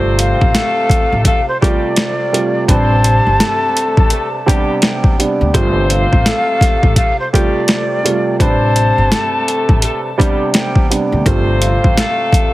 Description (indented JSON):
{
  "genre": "hip hop, boom-bap hip-hop",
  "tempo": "84 BPM",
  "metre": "4/4",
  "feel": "swing 61% on 16ths",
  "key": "unclear",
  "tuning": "A4 = 441 Hz",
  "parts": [
    { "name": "dark upright piano", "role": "accompaniment", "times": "0.0-12.5 s", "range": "C3 to B4", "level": "-18 LUFS", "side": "right 3 dB", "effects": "cassette tape, high-pass filter, low-pass filter" },
    { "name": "warm saxophone section", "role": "stabs", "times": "0.0-12.5 s", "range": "G3 to C5", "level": "-21 LUFS", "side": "left 2 dB", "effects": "high-pass filter, low-pass filter, digital delay" },
    { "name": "upright bass", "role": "bass", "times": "0.0-12.0 s", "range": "G1 to D2", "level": "-16 LUFS", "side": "equal", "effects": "none" },
    { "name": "breathy jazz flute", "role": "melody", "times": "0.2-12.5 s", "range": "C5 to A5", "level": "-18 LUFS", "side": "left 1 dB", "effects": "high-pass filter, low-pass filter, digital delay" },
    { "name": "boom bap sampler-style drum kit", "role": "drums", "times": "0.2-12.5 s", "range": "hi-hat, kick drum, snare drum", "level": "-14 LUFS", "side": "equal", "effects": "overdrive" }
  ],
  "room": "small room ambience",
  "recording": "heavily compressed radio sound, multiband compression",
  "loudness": "-11 LUFS",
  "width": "side -17 dB against mid",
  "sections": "0.0-12.5 A section",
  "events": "none",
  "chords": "0.0 G9sus4; 2.7 Am11; 5.5 G9sus4; 8.4 Am11; 11.3 G9sus4"
}